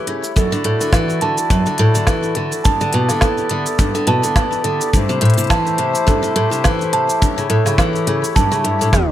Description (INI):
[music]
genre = folktronica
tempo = 105 BPM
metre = 4/4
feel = swing 56% on 16ths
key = A dorian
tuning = A4 = 441 Hz
[part]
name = celesta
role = second line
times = 0.0-9.1 s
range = G4 to A5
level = -21 LUFS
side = right 3 dB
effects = ping-pong delay, plate reverb
[part]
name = hand-pumped harmonium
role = sustained chords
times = 0.0-9.1 s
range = A3 to D5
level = -23 LUFS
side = left 4 dB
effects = stereo widening, plate reverb
[part]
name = picked steel-string acoustic guitar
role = arpeggios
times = 0.0-9.1 s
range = F#2 to E3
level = -18 LUFS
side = equal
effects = ping-pong delay
[part]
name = organic electronic drum kit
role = drums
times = 0.1-9.1 s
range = hi-hat, shaker, snare drum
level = -23 LUFS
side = right 1 dB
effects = none
[part]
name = kick drum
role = drums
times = 0.4-9.1 s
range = none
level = -17 LUFS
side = equal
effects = none
[sound]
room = light reverb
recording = tape stop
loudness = -14 LUFS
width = side -12 dB against mid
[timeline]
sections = 0.0-9.1 A section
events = tape stop 8.9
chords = 0.4 Dadd9; 2.6 Em7; 4.9 Am7; 7.2 A7